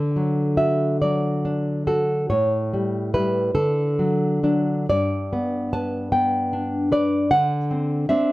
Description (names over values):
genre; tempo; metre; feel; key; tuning
romantic piece for solo classical guitar; 42-52 BPM (dotted quarters); 6/8; rubato; D major; A4 = 440 Hz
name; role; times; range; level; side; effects
nylon-string guitar; solo; 0.0-8.3 s; G2 to A5; -19 LUFS; equal; none
room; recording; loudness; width
light reverb; none; -19 LUFS; side -18 dB against mid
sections
0.0-8.3 A section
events
none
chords
0.0 D; 2.3 A7; 3.5 D; 4.9 G; 7.3 D7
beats
1.02 | 2.30 3.54 | 4.89 6.13 | 7.31